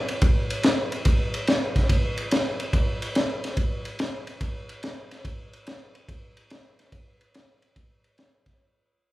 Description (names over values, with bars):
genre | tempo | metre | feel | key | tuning
blues | 143 BPM | 4/4 | swing 67% on 8ths | none | none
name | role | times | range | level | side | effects
crunchy breakbeat drum kit | drums | 0.1-8.5 s | kick drum, ride cymbal, snare drum | -23 LUFS | equal | none
room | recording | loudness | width
light reverb | band playing live in one room | -22 LUFS | side -17 dB against mid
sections
0.0-8.6 A section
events
fade-out 0.0-8.6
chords
none